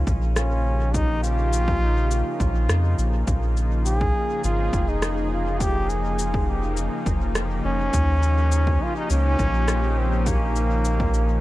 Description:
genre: ambient dub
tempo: 103 BPM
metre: 4/4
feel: straight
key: unclear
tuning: A4 = 436 Hz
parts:
  - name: bright trombone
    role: melody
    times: 0.0-11.4 s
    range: Bb3 to Ab4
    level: -27 LUFS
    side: equal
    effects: dub echo
  - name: warm analog pad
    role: sustained chords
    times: 0.0-11.4 s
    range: Db3 to Ab4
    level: -29 LUFS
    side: left 1 dB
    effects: chorus
  - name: soft dub sub bass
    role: bass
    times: 0.0-11.4 s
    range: F1 to F2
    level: -22 LUFS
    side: equal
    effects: none
  - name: electronic cabasa and rim click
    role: drums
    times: 0.1-11.3 s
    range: none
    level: -31 LUFS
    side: left 1 dB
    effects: dub echo
  - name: electronic kick drum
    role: drums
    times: 0.1-11.1 s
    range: none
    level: -26 LUFS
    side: equal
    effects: overdrive
room: little or no reverb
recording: none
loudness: -20 LUFS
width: side -17 dB against mid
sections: 0.0-11.4 A section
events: none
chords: 0.0 Eb9; 3.3 Bbm7; 7.9 Eb9

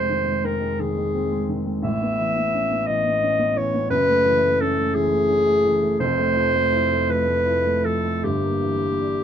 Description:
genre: classical, impressionist duo for clarinet and grand piano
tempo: 50-58 BPM (dotted quarters)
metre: 6/8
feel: rubato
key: unclear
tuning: A4 = 440 Hz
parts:
  - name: mellow clarinet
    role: melody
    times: 0.0-9.2 s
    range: G4 to E5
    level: -20 LUFS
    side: left 1 dB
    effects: none
  - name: dark baby grand piano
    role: accompaniment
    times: 0.0-9.2 s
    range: F1 to E4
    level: -23 LUFS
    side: right 1 dB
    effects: none
room: light reverb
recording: close, detailed microphones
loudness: -19 LUFS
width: side -9 dB against mid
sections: 0.0-9.2 A section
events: none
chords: 0.0 Fm7; 1.8 Aadd9; 3.9 F#m9; 6.0 Fmaj7; 8.2 Gm6

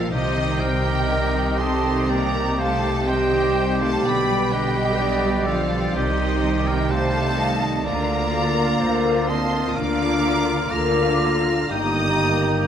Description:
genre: classical, slow romantic movement for symphony orchestra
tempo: 62 BPM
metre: 4/4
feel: rubato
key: unclear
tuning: A4 = 439 Hz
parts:
  - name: rich studio violin section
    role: melody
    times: 0.0-12.7 s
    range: Eb5 to F6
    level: -28 LUFS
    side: left 1 dB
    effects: none
  - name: bright large flute ensemble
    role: second line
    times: 0.0-12.7 s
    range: C5 to D6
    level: -29 LUFS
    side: right 1 dB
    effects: none
  - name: clear oboe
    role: second line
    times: 0.0-12.7 s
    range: G4 to Bb5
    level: -29 LUFS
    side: right 1 dB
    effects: none
  - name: rich studio violin section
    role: second line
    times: 0.0-12.7 s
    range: Eb4 to F5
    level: -33 LUFS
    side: left 1 dB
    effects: none
  - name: rich studio viola section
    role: accompaniment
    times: 0.0-12.7 s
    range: C3 to G4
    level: -31 LUFS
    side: right 3 dB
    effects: none
  - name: dark trombone section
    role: sustained chords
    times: 0.0-12.7 s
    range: D3 to Bb3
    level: -31 LUFS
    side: right 4 dB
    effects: none
  - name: mellow French horn section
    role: sustained chords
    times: 0.0-12.7 s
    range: Eb3 to F4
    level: -28 LUFS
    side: left 5 dB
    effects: none
  - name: concert harp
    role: arpeggios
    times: 0.0-12.7 s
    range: G2 to F5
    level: -30 LUFS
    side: left 7 dB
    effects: none
  - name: rich studio cello section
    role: bass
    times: 0.0-12.6 s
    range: G2 to D3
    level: -29 LUFS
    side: right 2 dB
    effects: none
  - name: rich studio double bass section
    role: bass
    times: 0.0-12.6 s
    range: G1 to D2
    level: -26 LUFS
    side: right 2 dB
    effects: none
  - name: mellow clarinet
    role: second line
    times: 0.1-12.7 s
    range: G4 to Eb5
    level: -29 LUFS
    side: equal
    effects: none
  - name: mellow trumpet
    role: stabs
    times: 0.1-12.7 s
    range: F4 to G4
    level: -30 LUFS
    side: right 2 dB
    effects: none
room: moderate scoring stage reverb, RT60 1.7 s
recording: none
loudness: -18 LUFS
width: side -8 dB against mid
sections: 0.0-12.7 A section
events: none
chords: 0.1 Cm; 4.0 G/B; 5.9 Cm; 7.8 Bb/D; 11.7 Eb/G

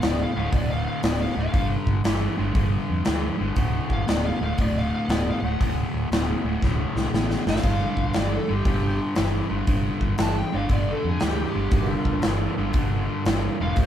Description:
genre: blues rock power trio and southern rock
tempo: 118 BPM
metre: 4/4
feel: swing 66% on 8ths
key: unclear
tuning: A4 = 440 Hz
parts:
  - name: smooth overdriven lead guitar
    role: melody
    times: 0.0-13.9 s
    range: G4 to A5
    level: -30 LUFS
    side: equal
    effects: none
  - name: sludgy distorted guitar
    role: riff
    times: 0.0-13.9 s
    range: D2 to E3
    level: -26 LUFS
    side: left 1 dB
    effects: overdrive
  - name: vintage muted fingered electric bass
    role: bass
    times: 0.0-13.9 s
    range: D1 to F2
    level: -27 LUFS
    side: equal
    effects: none
  - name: big rock drum kit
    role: drums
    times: 0.0-13.9 s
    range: hi-hat, kick drum, snare drum, splash cymbal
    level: -25 LUFS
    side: equal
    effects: none
  - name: overdriven tonewheel organ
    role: sustained chords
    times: 11.7-13.9 s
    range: A3 to E#5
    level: -34 LUFS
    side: right 2 dB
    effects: slow rotary speaker, chorus vibrato
room: light reverb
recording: band playing live in one room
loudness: -21 LUFS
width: side -10 dB against mid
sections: 0.0-13.9 A section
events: drum fill 6.6-7.6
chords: 0.0 D5; 1.5 G5; 3.6 D5; 7.6 G5; 11.7 Gm7

